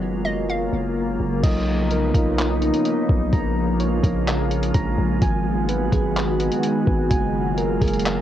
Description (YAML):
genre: hip hop, atmospheric cloud-rap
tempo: 127 BPM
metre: 4/4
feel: half-time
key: B lydian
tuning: A4 = 440 Hz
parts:
  - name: hollow square pluck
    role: melody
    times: 0.0-0.9 s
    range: C#5 to E#5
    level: -29 LUFS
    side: equal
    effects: chorus, analog delay
  - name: glassy FM pad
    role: sustained chords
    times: 0.0-8.2 s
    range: C#3 to F#4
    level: -22 LUFS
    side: equal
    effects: ensemble chorus, built-in reverb, sidechain pumping
  - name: long sustained 808-style bass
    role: bass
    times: 0.0-8.2 s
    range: F#1 to B1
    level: -24 LUFS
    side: equal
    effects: none
  - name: soft electric-piano-like synth keys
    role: arpeggios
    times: 1.4-8.2 s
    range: B3 to A#5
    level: -28 LUFS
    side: right 4 dB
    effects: chorus, analog delay
  - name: lo-fi sampler-style drum kit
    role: drums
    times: 1.4-8.2 s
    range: crash cymbal, handclaps, hi-hat, kick drum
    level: -23 LUFS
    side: equal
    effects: cassette tape
room: light reverb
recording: home recording on cassette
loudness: -19 LUFS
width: side -11 dB against mid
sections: 0.0-1.4 A section; 1.4-8.2 B section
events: filter sweep 0.0-1.4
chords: 0.0 F#maj9; 1.4 Bmaj9#11; 3.3 A#m7; 5.2 G#m7; 7.1 F#maj9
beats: 0.02 0.49 0.96 | 1.44 1.91 2.38 2.85 | 3.33 3.80 4.27 4.75 | 5.22 5.69 6.16 6.63 | 7.11 7.58 8.05